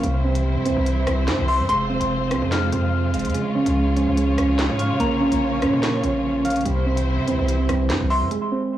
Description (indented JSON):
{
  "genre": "hip hop, drill",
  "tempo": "145 BPM",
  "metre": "4/4",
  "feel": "half-time",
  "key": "unclear",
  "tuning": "A4 = 440 Hz",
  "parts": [
    { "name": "mellow tine electric piano", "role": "accompaniment", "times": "0.0-8.3 s", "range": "C3 to Bb3", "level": "-29 LUFS", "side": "left 1 dB", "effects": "fast stereo tremolo, low-pass filter" },
    { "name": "dark studio string section", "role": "sustained chords", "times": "0.0-8.3 s", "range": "G3 to Db5", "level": "-28 LUFS", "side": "left 1 dB", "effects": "none" },
    { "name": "soft electric-piano-like synth keys", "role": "arpeggios", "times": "0.0-8.8 s", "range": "G3 to F5", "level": "-23 LUFS", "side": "right 2 dB", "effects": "chorus, low-pass filter, tape echo" },
    { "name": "hard-hitting 808-style bass", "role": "bass", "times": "0.0-8.3 s", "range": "E1 to E3", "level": "-23 LUFS", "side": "equal", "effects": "none" },
    { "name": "drill drum kit", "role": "drums", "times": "0.0-8.4 s", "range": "handclaps, hi-hat, rim click, snare drum", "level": "-28 LUFS", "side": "equal", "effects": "none" },
    { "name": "soft synth bell", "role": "second line", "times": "1.5-8.3 s", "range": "Bb5 to F6", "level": "-27 LUFS", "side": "left 2 dB", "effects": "chorus, phaser, tape echo" }
  ],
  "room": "light reverb, digital ambience",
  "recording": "blown-out, overdriven recording, overdrive",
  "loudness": "-18 LUFS",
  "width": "side -12 dB against mid",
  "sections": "0.0-8.3 A section",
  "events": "break 8.3-8.8",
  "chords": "0.0 C; 1.7 Fm; 3.3 Db; 5.0 Bbm; 6.7 C"
}